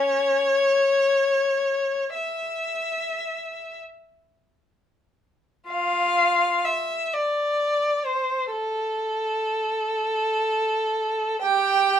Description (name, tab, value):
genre	classical, free, expressive piece for unaccompanied violin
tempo	26-46 BPM (dotted quarters)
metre	6/8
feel	rubato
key	unclear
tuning	A4 = 440 Hz
part	rich violin	solo	0.0-12.0 s	Db4 to G5	-21 LUFS	equal	none
room	light reverb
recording	minimal, uncompressed stereo recording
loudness	-21 LUFS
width	side -9 dB against mid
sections	0.0-5.7 A section; 5.7-12.0 B section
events	none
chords	none